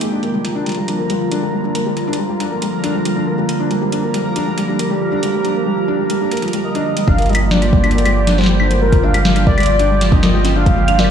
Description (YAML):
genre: IDM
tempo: 138 BPM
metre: 4/4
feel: straight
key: G minor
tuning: A4 = 439 Hz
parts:
  - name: warbly tape-like pad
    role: sustained chords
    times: 0.0-11.1 s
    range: D3 to G4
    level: -19 LUFS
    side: right 2 dB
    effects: chorus, built-in reverb, vintage 12-bit sampler grit
  - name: felt-muted upright piano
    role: arpeggios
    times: 0.0-11.0 s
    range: F3 to D4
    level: -21 LUFS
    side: left 3 dB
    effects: low-pass filter, tape echo
  - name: booming analog drum machine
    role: drums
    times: 0.0-11.1 s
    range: claves, hi-hat, snare drum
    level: -21 LUFS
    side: left 1 dB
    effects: none
  - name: bubbling stepped-filter texture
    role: texture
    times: 0.0-11.1 s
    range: G4 to Bb5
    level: -26 LUFS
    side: left 1 dB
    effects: chorus, built-in reverb
  - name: warm velvety synth lead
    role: melody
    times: 6.6-11.1 s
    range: Bb4 to F5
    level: -19 LUFS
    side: equal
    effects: chorus, tape echo
  - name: warm sub bass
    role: bass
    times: 7.1-11.1 s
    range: G1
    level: -16 LUFS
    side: equal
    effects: none
  - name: electronic kick drum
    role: drums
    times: 7.1-10.8 s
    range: none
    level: -14 LUFS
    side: equal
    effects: none
room: moderate lush hall reverb, RT60 1.8 s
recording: played on a big sound system in a bare room, large studio reverb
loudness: -14 LUFS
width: side -8 dB against mid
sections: 0.1-7.1 A section; 7.1-11.1 B section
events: none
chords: 0.1 Gm7